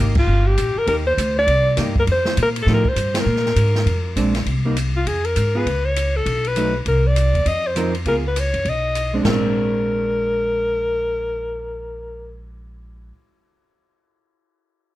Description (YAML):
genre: jazz, small-group swing and bop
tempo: 200 BPM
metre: 4/4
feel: swing 62% on 8ths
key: Bb mixolydian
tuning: A4 = 439 Hz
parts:
  - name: hollow-body jazz guitar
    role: accompaniment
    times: 0.0-13.2 s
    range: F3 to Bb4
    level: -24 LUFS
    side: right 2 dB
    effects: none
  - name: upright bass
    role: bass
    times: 0.0-13.1 s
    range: G1 to Bb2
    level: -21 LUFS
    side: equal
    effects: none
  - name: open jazz drum kit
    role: drums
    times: 0.1-9.3 s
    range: crash cymbal, hi-hat, kick drum, ride cymbal, snare drum, toms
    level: -26 LUFS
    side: equal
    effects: none
  - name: warm alto saxophone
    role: melody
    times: 0.2-12.4 s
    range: F4 to Eb5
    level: -21 LUFS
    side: left 1 dB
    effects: none
room: light reverb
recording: dark, warm production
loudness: -17 LUFS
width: side -15 dB against mid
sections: 0.0-4.5 A section; 4.5-9.3 B section; 9.3-11.6 C section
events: band accent 0.1, 3.1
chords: 0.0 Cm7; 2.1 F9; 3.3 Bb9; 4.5 Cm7; 5.1 Fsus4; 5.7 Aadd9/C# (rootless); 6.3 B7; 6.9 Cm; 7.5 F7sus4; 8.1 Db7; 8.7 B; 9.3 Bb9